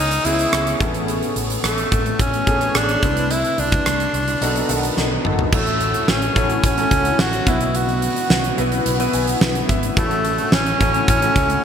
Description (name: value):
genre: 1980s-style pop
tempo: 108 BPM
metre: 4/4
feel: straight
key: unclear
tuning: A4 = 440 Hz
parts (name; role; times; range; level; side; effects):
- clear tenor saxophone; melody; 0.0-11.6 s; A3 to F#4; -21 LUFS; equal; digital delay
- warm concert grand piano; accompaniment; 0.0-11.6 s; A2 to G#5; -23 LUFS; left 1 dB; analog chorus
- fretless electric bass; bass; 0.0-11.6 s; G#1 to C#2; -25 LUFS; equal; none
- huge arena drum kit; drums; 0.1-11.6 s; crash cymbal, hi-hat, kick drum, rim click, snare drum, toms; -20 LUFS; equal; gated reverb
room: moderate plate reverb, RT60 1.9 s, small room ambience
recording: bright 1980s-style digital production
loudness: -16 LUFS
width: side -8 dB against mid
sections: 0.0-5.5 A section; 5.5-11.6 B section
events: drum fill 5.0-5.5; grand piano fill 8.9-10.0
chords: 0.0 C#m7; 0.8 Amaj9; 3.0 Cmaj9; 4.4 B7; 5.5 A6; 7.5 Bsus4; 10.0 A6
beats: 0.53 | 1.08 1.64 2.19 2.75 | 3.31 3.86 4.42 4.97 | 5.53 6.08 6.64 7.19 | 7.75 8.30 8.86 9.42 | 9.97 10.53 11.08 11.64